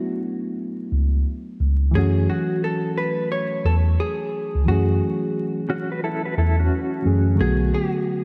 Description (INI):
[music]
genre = lo-fi hip hop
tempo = 88 BPM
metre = 4/4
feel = swing 64% on 16ths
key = F# minor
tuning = A4 = 439 Hz
[part]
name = vintage hollow-body jazz guitar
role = melody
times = 0.0-8.2 s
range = F#4 to C#5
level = -30 LUFS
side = equal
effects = low-pass filter, analog delay
[part]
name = reed electric piano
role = accompaniment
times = 0.0-8.2 s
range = D3 to G#4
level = -27 LUFS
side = equal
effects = low-pass filter
[part]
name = mellow tine electric piano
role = bass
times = 0.9-7.7 s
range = B1 to F#2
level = -21 LUFS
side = equal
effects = none
[part]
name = mellow electric guitar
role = second line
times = 5.7-7.4 s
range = C#4 to B4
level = -29 LUFS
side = equal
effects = tremolo, low-pass filter, analog delay
[sound]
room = moderate lush hall reverb, RT60 3.0 s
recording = dreamy mix soaked in reverb, vinyl crackle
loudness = -22 LUFS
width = mono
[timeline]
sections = 0.0-8.2 A section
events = none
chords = 0.0 D69; 1.9 F#m7; 7.4 Bm7